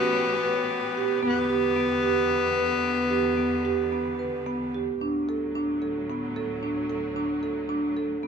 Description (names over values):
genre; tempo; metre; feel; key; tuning
contemporary instrumental, chamber music in an uneven meter; 112 BPM; 7/4; straight; unclear; A4 = 440 Hz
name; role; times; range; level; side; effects
rich viola; second line; 0.0-4.7 s; B3; -26 LUFS; left 5 dB; none
clear studio string section; sustained chords; 0.0-8.3 s; D2 to B4; -34 LUFS; right 1 dB; none
marimba with medium mallets; arpeggios; 0.0-8.3 s; B3 to B4; -26 LUFS; right 4 dB; none
room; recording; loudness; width
light reverb; none; -24 LUFS; side -6 dB against mid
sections
0.0-5.0 A section; 5.0-8.3 B section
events
none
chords
0.0 A13; 1.2 Em7; 5.0 D